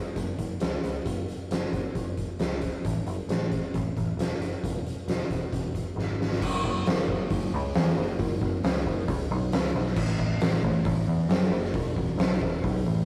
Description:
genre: quiet-loud alternative rock.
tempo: 135 BPM.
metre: 4/4.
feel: straight.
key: F# minor.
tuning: A4 = 440 Hz.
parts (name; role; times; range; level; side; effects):
overdriven picked electric bass; bass; 0.2-13.1 s; E1 to F#2; -31 LUFS; equal; none.
oversized low-tuned drum kit; drums; 0.2-12.7 s; crash cymbal, hi-hat, kick drum, snare drum; -30 LUFS; equal; none.
room: light reverb.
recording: rough rehearsal-room recording, warm saturation.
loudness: -28 LUFS.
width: mono.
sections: 0.0-6.4 A section; 6.4-13.1 B section.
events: drum fill 6.0-6.4.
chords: none.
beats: 0.15 0.60 | 1.05 1.50 1.94 2.39 | 2.84 3.29 3.73 4.18 | 4.63 5.08 5.52 5.97 | 6.41 6.86 7.30 7.75 | 8.19 8.64 9.08 9.52 | 9.97 10.41 10.86 11.30 | 11.75 12.19 12.64.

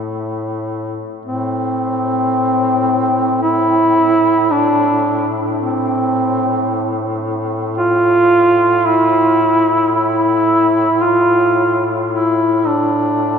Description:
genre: caucasian folk, Caucasian lament.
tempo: 55 BPM.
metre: 3/4.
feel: rubato.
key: A minor.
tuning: A4 = 439 Hz.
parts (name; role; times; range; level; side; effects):
warm duduk; drone; 0.0-13.4 s; A2; -21 LUFS; left 1 dB; none.
mellow duduk; melody; 1.3-13.4 s; C4 to F4; -14 LUFS; equal; ping-pong delay.
room: wet cathedral reverb, RT60 5.8 s.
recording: dreamy mix soaked in reverb.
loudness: -13 LUFS.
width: side -7 dB against mid.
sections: 0.0-1.2 A section; 1.2-13.4 B section.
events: none.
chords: none.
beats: 0.09 | 1.23 2.35 3.45 | 4.53 5.60 6.66 | 7.74 8.84 9.93 | 11.02 12.12 13.26.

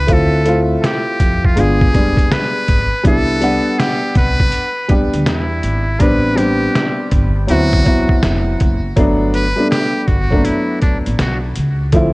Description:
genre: hip hop, jazz-hop.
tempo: 81 BPM.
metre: 4/4.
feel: swing 64% on 16ths.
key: G major.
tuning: A4 = 440 Hz.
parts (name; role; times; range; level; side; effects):
trumpet with metal mute; melody; 0.0-11.4 s; D4 to B4; -21 LUFS; equal; tape echo.
upright bass; bass; 0.0-12.1 s; F1 to F2; -18 LUFS; equal; none.
warm upright piano; accompaniment; 0.1-12.1 s; F3 to F#5; -17 LUFS; equal; none.
trip hop sampler-style drum kit; drums; 0.1-12.1 s; hi-hat, kick drum, snare drum; -15 LUFS; equal; none.
room: small room ambience.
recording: worn, warbling old tape, cassette tape, warbly pitch drift, nothing above 10.8 kHz.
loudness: -12 LUFS.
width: side -23 dB against mid.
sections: 0.0-9.0 A section; 9.0-12.1 B section.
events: muted trumpet solo 9.0-12.1.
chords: 0.1 Dm7; 1.6 G7b9; 3.0 Cmaj9; 6.0 Am11; 7.5 D13; 9.0 Gmaj7.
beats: | 0.08 0.82 1.56 2.30 | 3.04 3.78 4.52 5.26 | 6.00 6.75 7.49 8.23 | 8.97 9.71 10.45 11.19 | 11.93.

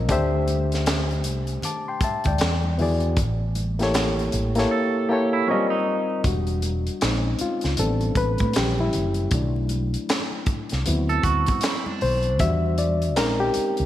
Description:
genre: R&B, neo-soul.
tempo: 78 BPM.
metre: 4/4.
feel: swing 61% on 16ths.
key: A dorian.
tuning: A4 = 439 Hz.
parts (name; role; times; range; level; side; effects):
barky reed electric piano; accompaniment; 0.0-13.9 s; E3 to D6; -24 LUFS; left 2 dB; slapback echo.
mellow fretless electric bass; bass; 0.0-13.9 s; E1 to A2; -24 LUFS; equal; analog chorus.
tight funk drum kit; drums; 0.1-13.9 s; handclaps, hi-hat, kick drum, snare drum; -26 LUFS; equal; none.
congas; percussion; 0.1-13.8 s; none; -37 LUFS; right 1 dB; none.
twangy electric guitar; second line; 4.7-6.2, 11.1-12.4 s; C#4 to A4; -27 LUFS; right 6 dB; slapback echo.
room: moderate concert hall reverb, RT60 2.5 s.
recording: big arena sound, vinyl crackle.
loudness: -20 LUFS.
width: side -13 dB against mid.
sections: 0.0-6.2 A section; 6.2-13.9 B section.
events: drums muted 4.7-6.2; reed electric piano solo 6.2-13.9.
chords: 0.1 D9sus4; 2.4 E7; 3.2 A7b9; 5.5 D#add9; 6.2 Em9; 7.0 Bbm11; 7.8 Am11; 8.5 A#dim7; 9.3 Bm7; 10.9 D13; 12.4 Em9; 13.2 Bbm11.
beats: | 0.09 0.86 1.62 2.40 | 3.16 3.93 4.70 5.47 | 6.24 7.01 7.78 8.55 | 9.32 10.09 10.86 11.62 | 12.39 13.16.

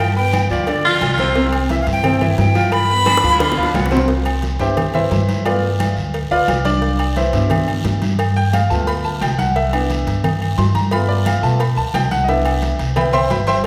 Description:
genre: latin, salsa.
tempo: 176 BPM.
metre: 4/4.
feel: straight.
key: C major.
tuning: A4 = 443 Hz.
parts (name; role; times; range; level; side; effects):
bright silver concert flute; melody; 0.0-3.7 s; D5 to B5; -21 LUFS; equal; none.
bright concert grand piano; accompaniment; 0.0-13.7 s; B2 to C6; -22 LUFS; equal; none.
upright bass; bass; 0.0-13.7 s; G1 to B2; -22 LUFS; equal; none.
congas; percussion; 0.0-13.7 s; none; -27 LUFS; equal; none.
cowbell and bongos; percussion; 0.3-13.7 s; none; -31 LUFS; equal; none.
guiro; percussion; 0.3-13.7 s; none; -36 LUFS; equal; none.
timbales and agogo bells; percussion; 0.3-13.5 s; none; -28 LUFS; equal; none.
raspy baritone saxophone; second line; 0.8-4.1 s; B3 to F4; -24 LUFS; equal; none.
room: wet scoring stage reverb, RT60 2.0 s.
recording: recorded in a church or concert hall.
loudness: -17 LUFS.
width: mono.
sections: 0.0-4.1 A section; 4.1-13.7 B section.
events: drum fill 3.1-4.1; grand piano solo 4.1-13.7.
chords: 0.0 G7; 1.4 C; 2.7 G7; 4.1 Cmaj7; 5.5 G7; 6.8 Cmaj7; 8.2 G7; 9.6 Cmaj7; 10.9 G7; 12.3 Cmaj7.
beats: 0.33 0.67 1.01 | 1.35 1.70 2.04 2.38 | 2.72 3.06 3.41 3.75 | 4.09 4.43 4.78 5.12 | 5.46 5.80 6.14 6.48 | 6.83 7.17 7.51 7.85 | 8.19 8.54 8.88 9.22 | 9.56 9.90 10.24 10.58 | 10.92 11.26 11.61 11.95 | 12.29 12.63 12.97 13.31 | 13.65.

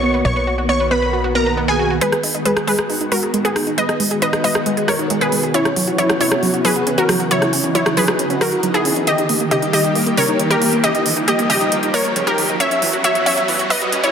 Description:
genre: uplifting trance.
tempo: 136 BPM.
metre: 4/4.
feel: straight.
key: G# minor.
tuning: A4 = 440 Hz.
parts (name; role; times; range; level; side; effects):
wide unison pluck; melody; 0.0-14.1 s; B3 to E5; -18 LUFS; left 1 dB; tape echo.
supersaw stab; second line; 0.0-1.9 s; G#5 to C#6; -23 LUFS; left 1 dB; phaser, cassette tape, tape echo.
analog string pad; sustained chords; 0.0-14.1 s; D#3 to G4; -23 LUFS; equal; ensemble chorus.
analog pluck; arpeggios; 0.0-14.1 s; C#3 to B4; -23 LUFS; right 3 dB; chorus, tape echo.
plucky analog bass; bass; 0.0-2.0 s; B1; -23 LUFS; left 1 dB; none.
big-room dance drum kit; drums; 2.0-14.1 s; hi-hat, rim click; -21 LUFS; right 1 dB; low-pass filter on hats, soft clipping on snare, low-pass filter on snare, low-pass filter on room.
riser; sound effects; 3.8-14.1 s; none; -27 LUFS; right 1 dB; none.
room: wet concert hall reverb, RT60 2.0 s.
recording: dense, heavily limited modern master, high-pass filter.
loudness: -14 LUFS.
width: side -7 dB against mid.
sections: 0.0-2.0 A section; 2.0-14.1 B section.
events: filter sweep on synth pluck 0.0-2.0; filter sweep on supersaw synth 0.0-2.0; build-up 2.0-14.1; filter sweep on synth arpeggio sound 2.0-14.1; riser 3.8-14.1.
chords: 0.0 Bmaj7; 2.0 G#m7; 5.5 F#7sus4; 9.1 D#; 12.6 F#7sus4.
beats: | 0.25 0.69 1.13 1.57 | 2.02 2.46 2.90 3.34 | 3.78 4.22 4.66 5.10 | 5.54 5.99 6.43 6.87 | 7.31 7.75 8.19 8.63 | 9.07 9.52 9.96 10.40 | 10.84 11.28 11.72 12.16 | 12.60 13.04 13.48 13.93.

